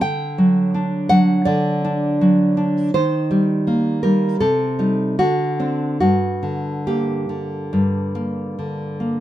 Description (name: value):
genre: romantic piece for solo classical guitar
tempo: 69-84 BPM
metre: 4/4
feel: rubato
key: G minor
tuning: A4 = 439 Hz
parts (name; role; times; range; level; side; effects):
- nylon-string guitar; solo; 0.0-9.2 s; G2 to G5; -17 LUFS; equal; none
room: light reverb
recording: minimal, uncompressed stereo recording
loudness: -17 LUFS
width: side -13 dB against mid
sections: 0.0-9.2 A section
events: none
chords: 0.0 D; 2.9 Eb; 4.4 Am7b5/C; 5.2 D7; 6.0 Gm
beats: | 0.01 0.74 1.46 2.21 | 2.94 3.66 4.40 5.19 | 6.01 6.85 7.72 8.56